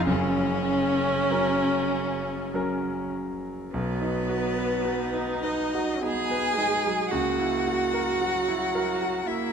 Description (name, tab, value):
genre	classical, slow romantic movement for piano quartet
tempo	48-57 BPM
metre	3/4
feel	rubato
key	B major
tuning	A4 = 440 Hz
part	rich violin	melody	0.0-9.5 s	C#4 to G#5	-31 LUFS	left 8 dB	none
part	rich cello	second line	0.0-9.5 s	C#3 to G#4	-29 LUFS	right 6 dB	none
part	clear grand piano	accompaniment	0.0-9.5 s	F1 to B4	-28 LUFS	equal	none
part	rich viola	accompaniment	0.0-9.5 s	F#3 to D#4	-30 LUFS	equal	none
room	moderate concert hall reverb, RT60 2.0 s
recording	close, detailed microphones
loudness	-24 LUFS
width	side -7 dB against mid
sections	0.0-3.7 A section; 3.7-9.5 B section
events	none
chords	0.1 F#; 3.7 B; 7.1 F#7/C#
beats	| 0.07 1.30 2.52 | 3.73 4.84 6.01 | 7.10 8.18 9.27